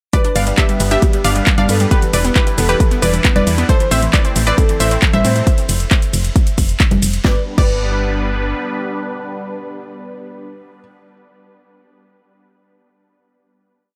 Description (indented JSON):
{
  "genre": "uplifting trance",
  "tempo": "135 BPM",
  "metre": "4/4",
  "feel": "straight",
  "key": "G mixolydian",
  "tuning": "A4 = 440 Hz",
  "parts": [
    { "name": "unison pluck", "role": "melody", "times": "0.1-10.8 s", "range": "G4 to F5", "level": "-24 LUFS", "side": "equal", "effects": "cassette tape, sidechain pumping, digital delay" },
    { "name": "clear grand piano", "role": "second line", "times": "0.1-10.8 s", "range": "B4 to F5", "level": "-30 LUFS", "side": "equal", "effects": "none" },
    { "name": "felt-muted upright piano", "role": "second line", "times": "0.1-10.8 s", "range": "G4 to C5", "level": "-28 LUFS", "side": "equal", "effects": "digital delay" },
    { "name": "analog pluck", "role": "arpeggios", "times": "0.1-7.7 s", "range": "E3 to D4", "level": "-27 LUFS", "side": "equal", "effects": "chorus, sidechain pumping, digital delay" },
    { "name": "electronic kick drum", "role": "drums", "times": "0.1-7.7 s", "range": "none", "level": "-16 LUFS", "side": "equal", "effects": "none" },
    { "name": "house drum kit", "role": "drums", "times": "0.1-7.7 s", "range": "congas, crash cymbal, handclaps, hi-hat, ride cymbal, shaker, snare drum", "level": "-22 LUFS", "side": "equal", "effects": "none" },
    { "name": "filtered supersaw swell", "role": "sustained chords", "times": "0.4-10.5 s", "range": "G3 to C5", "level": "-27 LUFS", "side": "equal", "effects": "sidechain pumping" },
    { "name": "solid FM bass", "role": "bass", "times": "0.4-8.5 s", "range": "E1 to A2", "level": "-20 LUFS", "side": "equal", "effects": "sidechain pumping" }
  ],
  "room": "little or no reverb",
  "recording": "none",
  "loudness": "-15 LUFS",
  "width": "mono",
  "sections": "0.1-7.2 drop; 7.2-10.8 final chord",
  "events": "drop 0.1-7.2",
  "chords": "0.1 G; 1.9 Em7; 3.7 Am; 5.5 N.C.; 7.2 G"
}